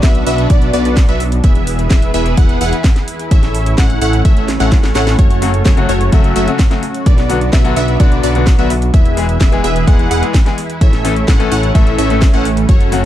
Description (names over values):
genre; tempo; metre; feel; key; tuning
EDM, festival progressive house; 128 BPM; 4/4; straight; unclear; A4 = 436 Hz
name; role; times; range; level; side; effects
lush unison pad; sustained chords; 0.0-13.1 s; E3 to B4; -23 LUFS; right 1 dB; chorus, phaser, sidechain pumping
plucky unison lead; arpeggios; 0.0-13.1 s; C#5 to F#5; -23 LUFS; equal; phaser, sidechain pumping, digital delay
supersaw stab; riff; 0.0-13.1 s; A3 to F#5; -19 LUFS; equal; sidechain pumping, digital delay
fat analog bass; bass; 0.0-13.1 s; E1 to B1; -17 LUFS; equal; sidechain pumping
electronic kick drum; drums; 0.0-12.8 s; none; -10 LUFS; equal; none
house drum kit; drums; 0.0-13.0 s; hi-hat, snare drum; -23 LUFS; equal; none
bright grand piano; accompaniment; 5.4-13.0 s; A2 to A4; -20 LUFS; left 6 dB; sidechain pumping, digital delay
room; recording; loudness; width
little or no reverb; dark, warm production; -10 LUFS; side -12 dB against mid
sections
0.0-13.1 A section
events
drum fill 4.5-5.2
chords
0.0 Bm; 1.4 E; 3.3 A; 5.2 F#m; 7.1 Bm; 8.9 E; 10.8 A